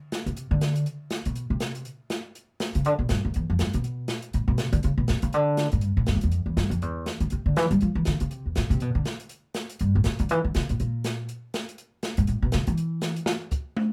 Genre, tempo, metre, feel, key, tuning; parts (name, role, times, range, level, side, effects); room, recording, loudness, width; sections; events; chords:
jazz, small-group swing and bop; 242 BPM; 4/4; swing 59% on 8ths; A4 = 441 Hz
open jazz drum kit; drums; 0.1-13.8 s; hi-hat, kick drum, snare drum, toms; -33 LUFS; equal
upright bass; bass; 0.3-13.2 s; D2 to G3; -26 LUFS; equal
light reverb; -27 LUFS; mono
0.0-5.3 A section; 5.3-13.3 A section
upright bass solo 0.0-13.3